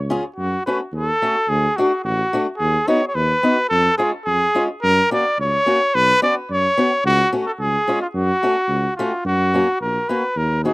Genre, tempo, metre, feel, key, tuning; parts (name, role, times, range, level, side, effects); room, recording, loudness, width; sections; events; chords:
alpine folk, alpine dance band; 108 BPM; 2/4; straight; F# harmonic minor; A4 = 445 Hz
clear trumpet; melody; 0.0-10.7 s; E#4 to D5; -18 LUFS; equal
mellow tuba; bass; 0.0-10.7 s; A1 to F#2; -22 LUFS; equal
fingerpicked swing-style acoustic guitar; accompaniment; 0.1-10.7 s; G#3 to G#4; -22 LUFS; left 1 dB
little or no reverb; recorded outdoors, with no room sound; -16 LUFS; side -23 dB against mid
0.4-9.3 A section; 9.3-10.7 B section
0.4 F#m; 1.5 D; 2.6 B/D#; 3.7 C#/E#; 4.8 F#; 5.9 Bsus2; 7.0 F#m/C#; 7.6 C#; 8.1 F#m; 9.3 F#